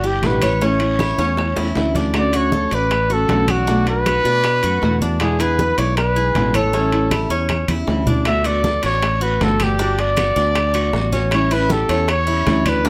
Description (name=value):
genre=latin, Cuban son and guajira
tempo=157 BPM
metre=4/4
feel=straight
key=D major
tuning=A4 = 436 Hz
part: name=breathy trumpet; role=melody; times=0.0-12.9 s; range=F#4 to E5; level=-22 LUFS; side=equal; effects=plate reverb
part: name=nylon-string guitar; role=accompaniment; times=0.0-12.9 s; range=B2 to F#4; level=-25 LUFS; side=equal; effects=none
part: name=Cuban tres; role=arpeggios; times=0.0-12.9 s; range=C#4 to D5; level=-28 LUFS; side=equal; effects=none
part: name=fingered electric bass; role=bass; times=0.0-12.9 s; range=G1 to B2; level=-24 LUFS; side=equal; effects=none
part: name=bongos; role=percussion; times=0.0-12.9 s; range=none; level=-32 LUFS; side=equal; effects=none
part: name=congas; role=percussion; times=0.0-12.9 s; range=none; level=-28 LUFS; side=equal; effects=none
part: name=guiro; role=percussion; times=0.2-2.1, 8.3-12.9 s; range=none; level=-38 LUFS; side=equal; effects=none
part: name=timbales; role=percussion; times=0.2-12.9 s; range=none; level=-30 LUFS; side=equal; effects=none
part: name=claves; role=percussion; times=0.4-12.9 s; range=none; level=-34 LUFS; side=equal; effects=none
room=moderate studio ambience, RT60 0.5 s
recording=none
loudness=-18 LUFS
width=mono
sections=0.0-2.1 A section; 2.1-12.9 A section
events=drum fill 1.0-2.1, 7.5-8.3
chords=0.0 Em7; 0.6 A; 2.1 Dmaj7; 3.7 Bm7; 5.2 E7; 6.7 A7; 8.3 D6; 9.8 Gmaj7; 11.3 A7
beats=0.23 | 0.61 1.00 1.38 1.76 | 2.15 2.53 2.91 3.29 | 3.68 4.06 4.44 4.82 | 5.21 5.59 5.97 6.35 | 6.74 7.12 7.50 7.88 | 8.27 8.65 9.03 9.41 | 9.80 10.18 10.56 10.95 | 11.33 11.71 12.09 12.47 | 12.86